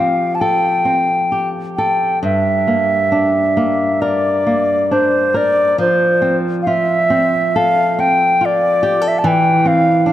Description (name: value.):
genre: celtic folk, Celtic slow air.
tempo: 64-74 BPM.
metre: 4/4.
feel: rubato.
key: unclear.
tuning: A4 = 440 Hz.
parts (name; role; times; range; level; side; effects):
bright baroque flute; melody; 0.0-10.1 s; C5 to A5; -14 LUFS; equal; none.
flamenco guitar; accompaniment; 0.0-10.1 s; G2 to Bb4; -18 LUFS; equal; none.
room: moderate cathedral reverb, RT60 4.4 s.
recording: none.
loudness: -13 LUFS.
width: side -12 dB against mid.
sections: 0.0-10.1 A section.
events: none.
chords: 0.0 Fadd9; 2.2 Gm; 5.8 F; 9.3 C/E.